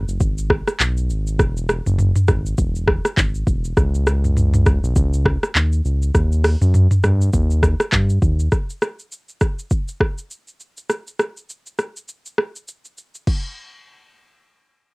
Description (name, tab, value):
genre	afrobeats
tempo	101 BPM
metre	4/4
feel	swing 58% on 16ths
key	unclear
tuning	A4 = 440 Hz
part	round analog bass	bass	0.0-8.5 s	E1 to G2	-18 LUFS	equal	none
part	afro-pop drum kit	drums	0.1-13.4 s	crash cymbal, handclaps, hi-hat, kick drum, rim click, shaker, toms	-18 LUFS	equal	overdrive, cassette tape
room	little or no reverb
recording	home recording on cassette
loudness	-17 LUFS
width	side -32 dB against mid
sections	0.0-8.5 A section; 8.5-13.3 B section; 13.3-14.9 C section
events	none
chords	none